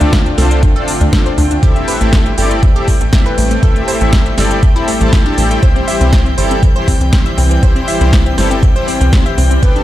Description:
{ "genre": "progressive house", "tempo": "120 BPM", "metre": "4/4", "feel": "straight", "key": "unclear", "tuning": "A4 = 444 Hz", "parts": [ { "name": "supersaw pad", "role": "sustained chords", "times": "0.0-9.8 s", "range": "D3 to E5", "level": "-21 LUFS", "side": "right 2 dB", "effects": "sidechain pumping" }, { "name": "glassy wavetable pluck", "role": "arpeggios", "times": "0.0-9.8 s", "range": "A3 to E5", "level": "-19 LUFS", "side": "left 2 dB", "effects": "chorus, sidechain pumping, ping-pong delay" }, { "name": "soft supersaw", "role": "stabs", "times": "0.0-9.8 s", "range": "B3 to A5", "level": "-19 LUFS", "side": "left 3 dB", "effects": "sidechain pumping, ping-pong delay" }, { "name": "tight sequencer bass", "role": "bass", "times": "0.0-9.7 s", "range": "G1 to D2", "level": "-14 LUFS", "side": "equal", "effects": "sidechain pumping" }, { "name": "deep house drum kit", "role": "drums", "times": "0.0-9.8 s", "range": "hi-hat, snare drum", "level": "-21 LUFS", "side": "right 1 dB", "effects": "none" }, { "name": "drifting glass-harmonics texture", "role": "texture", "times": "0.0-9.8 s", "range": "G5 to G6", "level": "-25 LUFS", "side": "left 1 dB", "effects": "chorus, built-in reverb, sidechain pumping" }, { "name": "electronic kick drum", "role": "drums", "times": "0.1-9.7 s", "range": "none", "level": "-11 LUFS", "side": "equal", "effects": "none" } ], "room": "little or no reverb", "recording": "played on a big sound system in a bare room, stone room reverb", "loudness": "-9 LUFS", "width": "side -14 dB against mid", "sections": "0.0-9.8 A section", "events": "none", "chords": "0.0 Dm7; 1.6 Am7; 5.6 C", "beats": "0.13 0.63 1.13 | 1.63 2.13 2.63 3.13 | 3.63 4.13 4.63 5.13 | 5.63 6.13 6.63 7.13 | 7.63 8.13 8.63 9.13 | 9.63" }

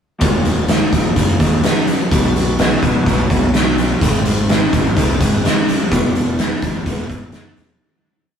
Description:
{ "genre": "quiet-loud alternative rock", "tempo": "126 BPM", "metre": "4/4", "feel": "straight", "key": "unclear", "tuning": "A4 = 440 Hz", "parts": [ { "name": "electric guitar through a small old amp", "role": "arpeggios", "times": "0.2-7.8 s", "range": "Eb2 to F#4", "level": "-21 LUFS", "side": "equal", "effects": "none" }, { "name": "fuzz fingered electric bass", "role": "bass", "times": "0.2-7.8 s", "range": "Eb1 to B2", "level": "-21 LUFS", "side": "equal", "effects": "overdrive" }, { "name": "oversized low-tuned drum kit", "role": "drums", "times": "0.2-7.7 s", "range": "hi-hat, kick drum, snare drum", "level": "-15 LUFS", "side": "equal", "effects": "none" } ], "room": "light reverb", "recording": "rough rehearsal-room recording, tube saturation", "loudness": "-13 LUFS", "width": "side -8 dB against mid", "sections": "0.2-7.8 verse", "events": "fade-out 5.9-7.8", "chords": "0.2 Ebm; 2.1 Bm; 4.0 Ab; 5.9 E", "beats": "| 0.21 0.69 1.16 1.64 | 2.11 2.59 3.06 3.54 | 4.01 4.49 4.96 5.43 | 5.91 6.38 6.86 7.33" }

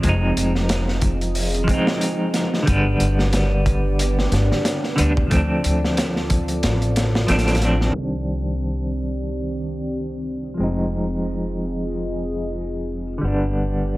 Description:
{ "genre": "trip hop", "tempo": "91 BPM", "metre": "4/4", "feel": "swing 58% on 16ths", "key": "C harmonic minor", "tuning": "A4 = 440 Hz", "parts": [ { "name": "semi-hollow electric guitar", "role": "accompaniment", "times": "0.0-14.0 s", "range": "D3 to Eb4", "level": "-23 LUFS", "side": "equal", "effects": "tremolo, low-pass filter, tape echo" }, { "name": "dark analog pad", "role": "sustained chords", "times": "0.0-14.0 s", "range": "Eb3 to G5", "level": "-28 LUFS", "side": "right 1 dB", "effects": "chorus" }, { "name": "upright bass", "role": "bass", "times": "0.0-14.0 s", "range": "F1 to D2", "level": "-23 LUFS", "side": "equal", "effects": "none" }, { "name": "crunchy breakbeat drum kit", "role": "drums", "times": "0.0-7.9 s", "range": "hi-hat, kick drum, snare drum", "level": "-23 LUFS", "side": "equal", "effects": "none" } ], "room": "studio reverb", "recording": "low-pass filter", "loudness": "-19 LUFS", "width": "side -19 dB against mid", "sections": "0.0-7.9 A section; 7.9-14.0 B section", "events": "none", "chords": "0.0 Fm7; 2.7 G; 5.3 Dm7; 7.9 Cmadd9; 10.6 Fm7; 13.2 G", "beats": "| 0.04 0.69 1.35 2.01 | 2.67 3.33 3.99 4.65 | 5.31 5.97 6.63 7.29 | 7.95 8.61 9.27 9.93 | 10.59 11.24 11.90 12.56 | 13.22 13.88" }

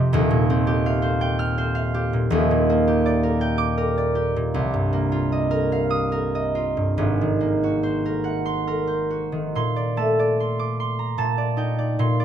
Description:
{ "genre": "classical, solo harp piece", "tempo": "68-84 BPM", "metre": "3/4", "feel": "rubato", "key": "Bb mixolydian", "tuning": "A4 = 440 Hz", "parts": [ { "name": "concert harp", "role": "solo", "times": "0.0-12.2 s", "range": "Eb1 to F6", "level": "-20 LUFS", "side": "equal", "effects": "none" } ], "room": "light reverb", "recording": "none", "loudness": "-20 LUFS", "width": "side -9 dB against mid", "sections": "0.0-9.5 A section; 9.5-12.2 B section", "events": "none", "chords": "0.1 Eb69; 2.3 Bb6/Eb; 4.5 Cm11; 7.0 Ab9; 9.5 Bbmaj9; 11.2 Ebmaj7#11/Bb", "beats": "| 0.14 0.87 1.59 | 2.33 3.06 3.78 | 4.54 5.32 6.12 | 6.98 7.83 8.68 | 9.54 10.39 11.19 | 11.99" }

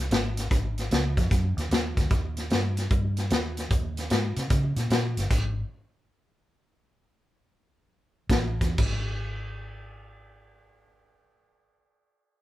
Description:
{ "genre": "electric blues shuffle", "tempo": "120-150 BPM", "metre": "4/4", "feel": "swing 65% on 8ths", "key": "unclear", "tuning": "A4 = 443 Hz", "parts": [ { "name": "vintage muted fingered electric bass", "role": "bass", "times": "0.0-5.6, 8.3-11.8 s", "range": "G1 to Db3", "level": "-28 LUFS", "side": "equal", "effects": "none" }, { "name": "vintage drum kit", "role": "drums", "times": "0.1-5.4, 8.3-8.9 s", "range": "crash cymbal, hi-hat, kick drum, snare drum", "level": "-26 LUFS", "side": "equal", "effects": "none" } ], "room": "light reverb", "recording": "band playing live in one room", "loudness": "-24 LUFS", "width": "side -15 dB against mid", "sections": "0.0-8.8 A section; 8.8-12.4 B section", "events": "slowing down 5.3-8.8; stop 5.3-8.3", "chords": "none", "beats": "0.11 | 0.51 0.91 1.31 1.71 | 2.11 2.51 2.90 3.31 | 3.71 4.11 4.50 4.90 | 5.30 5.71 6.11 6.52 | 6.95 7.38 7.83 8.30 | 8.78 9.28 9.78 10.28 | 10.78 11.28 11.78" }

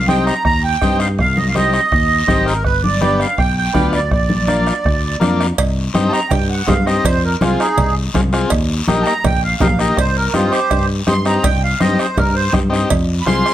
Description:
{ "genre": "latin, cumbia", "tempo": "164 BPM", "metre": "4/4", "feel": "straight", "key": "C minor", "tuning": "A4 = 440 Hz", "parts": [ { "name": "accordion", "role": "melody", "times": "0.0-13.5 s", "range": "Eb4 to C6", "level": "-18 LUFS", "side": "right 3 dB", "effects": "light tremolo tuning" }, { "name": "fingered electric bass", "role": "bass", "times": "0.0-13.4 s", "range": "G1 to G2", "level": "-19 LUFS", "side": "equal", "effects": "none" }, { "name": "overdriven combo organ", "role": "accompaniment", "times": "0.1-13.5 s", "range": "Bb3 to Ab4", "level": "-20 LUFS", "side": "left 3 dB", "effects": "none" }, { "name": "bombo", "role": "percussion", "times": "0.1-13.5 s", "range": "none", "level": "-21 LUFS", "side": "right 1 dB", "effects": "none" }, { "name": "congas", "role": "percussion", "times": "0.1-13.5 s", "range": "none", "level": "-22 LUFS", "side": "left 1 dB", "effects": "none" }, { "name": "guiro", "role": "percussion", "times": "0.1-13.5 s", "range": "none", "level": "-29 LUFS", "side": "left 6 dB", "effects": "none" }, { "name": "cowbell and timbales", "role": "percussion", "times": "5.6-13.1 s", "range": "none", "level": "-24 LUFS", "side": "right 5 dB", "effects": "none" } ], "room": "moderate studio reverb, RT60 0.8 s", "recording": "none", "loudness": "-13 LUFS", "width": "side -12 dB against mid", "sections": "0.0-5.6 A section; 5.6-13.5 B section", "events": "accordion solo 5.6-13.5", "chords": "0.0 Cm; 2.7 G7; 4.1 Bb; 5.6 Cm; 7.0 Fm; 8.5 Eb; 10.0 Cm; 12.9 Fm", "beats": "0.09 0.45 0.82 | 1.19 1.55 1.92 2.29 | 2.65 3.02 3.39 3.75 | 4.12 4.49 4.85 5.22 | 5.58 5.95 6.32 6.68 | 7.05 7.42 7.78 8.15 | 8.51 8.88 9.25 9.61 | 9.98 10.35 10.71 11.08 | 11.44 11.81 12.18 12.54 | 12.91 13.28" }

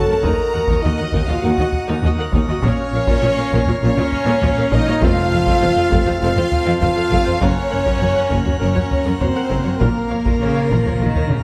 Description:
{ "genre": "cinematic, epic orchestral film score", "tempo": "100 BPM", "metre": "4/4", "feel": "straight", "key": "Bb harmonic minor", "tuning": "A4 = 440 Hz", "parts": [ { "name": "rich symphonic violin section", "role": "melody", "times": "0.0-11.4 s", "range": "Bb4 to Bb5", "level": "-31 LUFS", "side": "equal", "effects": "none" }, { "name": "warm symphonic violin section", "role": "second line", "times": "0.0-11.4 s", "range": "Bb4 to Bb5", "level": "-30 LUFS", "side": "equal", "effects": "none" }, { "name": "mellow French horn section", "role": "sustained chords", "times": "0.0-11.4 s", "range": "Bb3 to Bb4", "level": "-23 LUFS", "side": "equal", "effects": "none" }, { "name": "pipe organ, plenum", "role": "sustained chords", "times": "0.0-11.4 s", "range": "Bb3 to Gb5", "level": "-29 LUFS", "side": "equal", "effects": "none" }, { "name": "warm symphonic viola section", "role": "accompaniment", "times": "0.1-11.2 s", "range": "C4 to Gb5", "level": "-30 LUFS", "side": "equal", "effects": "none" }, { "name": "clear chamber cello section", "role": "bass", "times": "0.1-11.4 s", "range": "Eb2 to F3", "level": "-25 LUFS", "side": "equal", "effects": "none" }, { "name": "rich symphonic double bass section", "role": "bass", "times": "0.2-11.1 s", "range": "F1 to Eb2", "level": "-25 LUFS", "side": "equal", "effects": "none" }, { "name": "taiko ensemble", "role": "drums", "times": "0.2-11.4 s", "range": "none", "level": "-24 LUFS", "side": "equal", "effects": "none" }, { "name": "timpani", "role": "percussion", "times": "5.0-5.9, 9.8-11.4 s", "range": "F2 to Bb2", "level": "-28 LUFS", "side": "equal", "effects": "none" } ], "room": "moderate scoring stage reverb, RT60 1.5 s", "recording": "none", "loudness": "-17 LUFS", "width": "mono", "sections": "0.0-11.4 A section", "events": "timpani fill 9.8-11.4", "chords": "0.2 Ebm; 2.6 Bbm; 5.0 F; 7.4 Gb; 9.8 Bbm", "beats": "| 0.24 0.84 1.44 2.04 | 2.63 3.23 3.83 4.43 | 5.03 5.62 6.22 6.82 | 7.42 8.02 8.61 9.21 | 9.81 10.41 11.01" }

